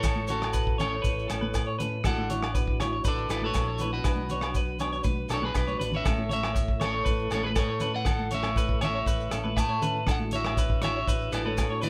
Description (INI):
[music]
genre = highlife guitar band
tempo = 120 BPM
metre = 4/4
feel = straight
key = A major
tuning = A4 = 443 Hz
[part]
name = electric guitar at the edge of break-up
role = melody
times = 0.0-11.9 s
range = F#4 to A5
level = -34 LUFS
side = equal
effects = none
[part]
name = mellow tonewheel organ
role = sustained chords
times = 0.0-11.9 s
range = A3 to C#5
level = -42 LUFS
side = equal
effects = slow rotary speaker, chorus vibrato
[part]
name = clean electric guitar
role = arpeggios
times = 0.0-11.9 s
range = A4 to C#5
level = -36 LUFS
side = equal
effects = none
[part]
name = fingered electric bass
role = bass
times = 0.0-11.9 s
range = A1 to A2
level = -36 LUFS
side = equal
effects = none
[part]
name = cloth-damped thuddy drum kit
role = drums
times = 0.0-11.9 s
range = hi-hat, kick drum, rim click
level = -31 LUFS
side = equal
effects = none
[part]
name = congas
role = percussion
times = 0.0-11.9 s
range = none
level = -38 LUFS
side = equal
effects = none
[part]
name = maracas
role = percussion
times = 0.0-11.9 s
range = none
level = -47 LUFS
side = equal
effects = none
[part]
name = agogo bells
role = percussion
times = 0.1-11.7 s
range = none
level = -40 LUFS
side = equal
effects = none
[part]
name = picked steel-string acoustic guitar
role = accompaniment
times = 0.3-11.9 s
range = E3 to A4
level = -41 LUFS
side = equal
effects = none
[sound]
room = moderate studio reverb, RT60 0.5 s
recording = band playing live in one room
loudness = -28 LUFS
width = mono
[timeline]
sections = 0.0-11.9 A section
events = drum fill 5.7-6.1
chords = 0.0 A; 2.0 Dadd9/A; 4.1 Bm; 6.1 A; 10.1 Dadd9/A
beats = | 0.04 0.54 1.04 1.54 | 2.05 2.55 3.05 3.55 | 4.05 4.56 5.06 5.56 | 6.06 6.56 7.07 7.57 | 8.07 8.57 9.07 9.57 | 10.07 10.58 11.08 11.58